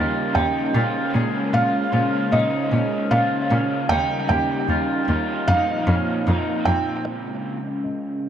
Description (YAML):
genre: dream pop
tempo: 76 BPM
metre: 4/4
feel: straight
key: Bb dorian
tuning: A4 = 442 Hz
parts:
  - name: felt-muted upright piano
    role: melody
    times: 0.0-8.3 s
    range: Eb5 to G5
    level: -25 LUFS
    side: right 2 dB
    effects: low-pass filter, dub echo
  - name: raw garage guitar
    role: accompaniment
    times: 0.0-7.6 s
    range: Bb2 to C5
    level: -28 LUFS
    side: right 5 dB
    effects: overdrive, harmonic tremolo, wide subtle chorus, dub echo
  - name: lush unison pad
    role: sustained chords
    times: 0.0-8.3 s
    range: Bb2 to Bb4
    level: -26 LUFS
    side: left 1 dB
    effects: chorus, low-pass filter
  - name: electric guitar through a small old amp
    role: arpeggios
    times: 0.0-8.3 s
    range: C4 to Ab4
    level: -28 LUFS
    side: left 3 dB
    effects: wide subtle chorus, low-pass filter, dub echo
  - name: rich cello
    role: bass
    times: 0.0-6.7 s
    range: Eb2 to Bb2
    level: -22 LUFS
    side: equal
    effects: none
room: moderate spring reverb, RT60 2.4 s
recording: echo-heavy mix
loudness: -19 LUFS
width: side -9 dB against mid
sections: 0.0-7.1 A section; 7.1-8.3 B section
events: filter sweep 7.1-8.3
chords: 0.0 Eb7; 0.7 Bbm9; 3.9 Eb7; 5.5 F7sus4; 7.1 Bbm7